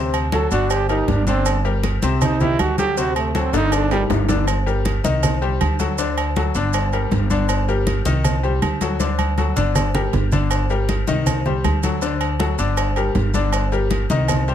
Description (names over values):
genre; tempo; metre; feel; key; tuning
latin, salsa; 159 BPM; 4/4; straight; G harmonic minor; A4 = 442 Hz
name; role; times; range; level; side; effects
bright concert grand piano; accompaniment; 0.0-14.5 s; C3 to Eb5; -23 LUFS; left 5 dB; none
upright bass; bass; 0.0-14.5 s; G1 to D2; -21 LUFS; right 1 dB; none
agogo bells and timbales; percussion; 0.1-14.5 s; none; -27 LUFS; right 6 dB; none
congas; percussion; 0.1-14.5 s; none; -25 LUFS; left 1 dB; none
cowbell and bongos; percussion; 0.1-14.5 s; none; -29 LUFS; left 5 dB; none
maracas; percussion; 0.1-14.5 s; none; -34 LUFS; right 9 dB; none
brilliant trombone; melody; 0.3-4.0 s; G3 to A4; -22 LUFS; right 4 dB; none
room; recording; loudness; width
little or no reverb; close, detailed microphones; -17 LUFS; side -10 dB against mid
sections
0.0-4.5 A section; 4.5-14.5 B section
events
trombone solo 0.0-4.5; drum fill 3.5-4.5, 9.0-10.5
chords
0.0 D7; 0.7 Gm; 2.2 Cm; 3.0 D7; 3.7 Gm; 5.2 Cm; 6.0 D; 6.7 Gm; 8.2 Cm; 9.0 D; 9.8 Gm; 11.3 Cm; 12.0 D; 12.8 Gm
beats
0.33 0.70 1.08 | 1.46 1.84 2.21 2.59 | 2.97 3.35 3.72 4.10 | 4.48 4.85 5.23 5.61 | 5.98 6.36 6.74 7.12 | 7.49 7.87 8.25 8.62 | 9.00 9.38 9.75 10.13 | 10.51 10.89 11.26 11.64 | 12.02 12.40 12.78 13.15 | 13.53 13.91 14.29